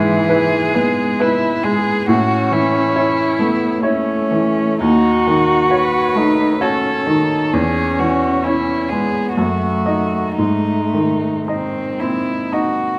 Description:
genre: classical, slow romantic movement for piano quartet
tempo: 65 BPM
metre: 3/4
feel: uneven beats, rubato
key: unclear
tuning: A4 = 439 Hz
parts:
  - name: muted violin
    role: melody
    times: 0.0-13.0 s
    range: B#3 to B4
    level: -23 LUFS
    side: equal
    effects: none
  - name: muted cello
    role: second line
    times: 0.0-12.5 s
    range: E3 to F#4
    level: -22 LUFS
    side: equal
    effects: none
  - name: bright baby grand piano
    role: accompaniment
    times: 0.0-13.0 s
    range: D#2 to D#5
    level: -20 LUFS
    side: equal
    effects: none
room: moderate recital hall reverb, RT60 1.2 s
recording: none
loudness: -17 LUFS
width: mono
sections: 0.0-13.0 A section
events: none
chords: 0.0 E/G#; 2.1 A; 4.8 D#m7b5; 7.5 C#m/E; 9.4 D#dim/F#; 10.4 G#

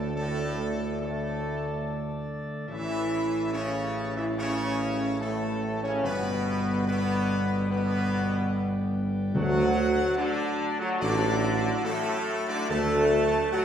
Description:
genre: classical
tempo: 72 BPM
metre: 4/4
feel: straight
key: D major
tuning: A4 = 440 Hz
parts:
  - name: bright trumpet section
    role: melody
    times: 0.0-13.6 s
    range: A4 to A5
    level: -36 LUFS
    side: equal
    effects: none
  - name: chamber organ, principal chorus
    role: sustained chords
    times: 0.0-13.6 s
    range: D3 to A4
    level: -33 LUFS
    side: equal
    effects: none
  - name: clear trombone section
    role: sustained chords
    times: 0.0-13.6 s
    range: A2 to A3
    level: -33 LUFS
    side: right 1 dB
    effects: none
  - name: dark French horn section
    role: sustained chords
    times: 0.0-13.6 s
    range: A3 to A4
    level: -30 LUFS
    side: left 1 dB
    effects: none
  - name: mellow tuba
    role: bass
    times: 0.0-13.4 s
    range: G1 to D2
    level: -30 LUFS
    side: right 2 dB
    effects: none
  - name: timpani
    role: percussion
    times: 9.3-10.6 s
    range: D3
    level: -31 LUFS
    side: left 1 dB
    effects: none
room: wet scoring stage reverb, RT60 1.7 s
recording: heard from further back in the room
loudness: -25 LUFS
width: side -8 dB against mid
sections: 0.0-13.6 A section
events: none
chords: 0.0 D5; 2.7 A; 6.0 G; 9.4 D

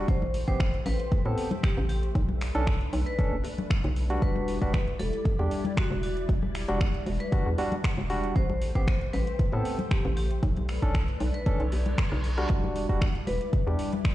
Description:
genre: deep house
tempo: 116 BPM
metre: 4/4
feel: swing 53% on 16ths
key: E minor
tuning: A4 = 440 Hz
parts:
  - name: soft string machine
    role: sustained chords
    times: 0.0-14.1 s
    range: G3 to D5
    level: -39 LUFS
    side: left 1 dB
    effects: phaser, ensemble chorus, sidechain pumping
  - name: barky tine electric piano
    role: stabs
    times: 0.0-13.9 s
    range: G3 to A4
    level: -33 LUFS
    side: right 1 dB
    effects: medium stereo tremolo, sidechain pumping, tape echo
  - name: hollow knocking FM bass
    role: bass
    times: 0.0-13.8 s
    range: E1 to A2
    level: -29 LUFS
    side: equal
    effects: sidechain pumping
  - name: vibraphone with hard mallets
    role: melody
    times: 0.1-11.6 s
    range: F#4 to C5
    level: -37 LUFS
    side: left 2 dB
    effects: tape echo
  - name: deep house drum kit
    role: drums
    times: 0.1-14.1 s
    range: finger snaps, hi-hat, rim click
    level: -38 LUFS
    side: equal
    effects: overdrive
  - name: electronic kick drum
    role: drums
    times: 0.1-14.1 s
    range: none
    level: -26 LUFS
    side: equal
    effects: overdrive
  - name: congas and bongos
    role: percussion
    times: 0.2-14.0 s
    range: none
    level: -36 LUFS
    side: left 2 dB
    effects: none
  - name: reverse cymbal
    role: sound effects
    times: 11.6-12.5 s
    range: none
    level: -41 LUFS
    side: right 2 dB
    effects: none
  - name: marimba with medium mallets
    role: melody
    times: 13.3-13.5 s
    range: B4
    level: -34 LUFS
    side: left 4 dB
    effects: analog delay
room: digital ambience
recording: played on a big sound system in a bare room, cassette tape, large studio reverb, nothing above 10.6 kHz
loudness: -25 LUFS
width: side -15 dB against mid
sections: 0.0-14.1 A section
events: reverse cymbal 11.6-12.5; drum fill 12.0-12.5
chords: 0.1 Am7; 2.2 Bm7; 4.2 Em7; 8.4 Am7; 10.4 Bm7; 12.5 Em7

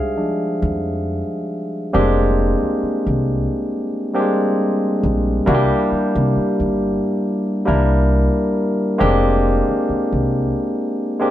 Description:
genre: R&B, neo-soul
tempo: 68 BPM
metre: 4/4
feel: swing 54% on 16ths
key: F dorian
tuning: A4 = 441 Hz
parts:
  - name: barky tine electric piano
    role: accompaniment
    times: 0.0-11.3 s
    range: F3 to F5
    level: -18 LUFS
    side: equal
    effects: overdrive
  - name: upright bass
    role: bass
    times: 0.6-10.5 s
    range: F1 to C3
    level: -20 LUFS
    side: equal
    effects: none
room: moderate studio reverb, RT60 0.8 s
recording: band playing live in one room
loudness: -16 LUFS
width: side -12 dB against mid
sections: 0.0-1.9 A section; 1.9-11.3 A section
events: tine electric piano solo 0.0-1.9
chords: 0.0 Fm69; 5.5 C7; 9.0 Fm69

